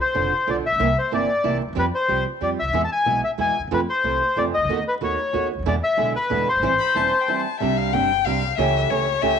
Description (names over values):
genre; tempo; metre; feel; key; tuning
tango; 186 BPM; 3/4; rubato; A minor; A4 = 438 Hz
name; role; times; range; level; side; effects
bandoneon; melody; 0.0-7.4 s; B4 to A5; -21 LUFS; left 3 dB; none
flamenco guitar; accompaniment; 0.1-9.4 s; B2 to G4; -25 LUFS; right 8 dB; none
upright bass; bass; 0.2-9.4 s; E1 to F2; -28 LUFS; equal; tube saturation
warm violin; second line; 6.8-9.4 s; C#5 to B5; -22 LUFS; left 11 dB; none
room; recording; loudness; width
moderate echo chamber reverb, RT60 1.7 s, studio reverb; 1960s-style stereo with parts hard left and right, vinyl crackle, nothing above 10.3 kHz; -19 LUFS; side -7 dB against mid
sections
0.0-7.6 A section; 7.6-9.4 B section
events
break 7.3-7.6; violin solo 7.6-9.4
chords
0.0 Bdim; 0.8 C7; 1.8 Fsus2; 2.7 E; 3.7 Fmaj7; 4.7 B7/D#; 5.7 E7; 6.6 Am7; 7.6 Csus2; 8.6 A7/C#